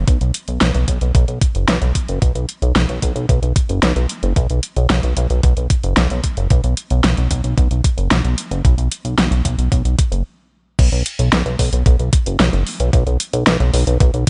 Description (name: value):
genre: synthwave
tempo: 112 BPM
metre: 4/4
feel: straight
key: unclear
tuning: A4 = 439 Hz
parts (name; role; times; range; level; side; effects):
- chorused synth bass; bass; 0.0-14.2 s; F#1 to B1; -19 LUFS; equal; sidechain pumping
- electronic kick drum; drums; 0.1-14.3 s; none; -18 LUFS; equal; overdrive
- pop drum kit; drums; 0.1-14.3 s; crash cymbal, hi-hat, snare drum; -22 LUFS; equal; overdrive
room: little or no reverb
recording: nothing above 10.3 kHz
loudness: -17 LUFS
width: mono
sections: 0.0-10.8 A section; 10.8-14.3 B section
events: stop 10.3-10.8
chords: none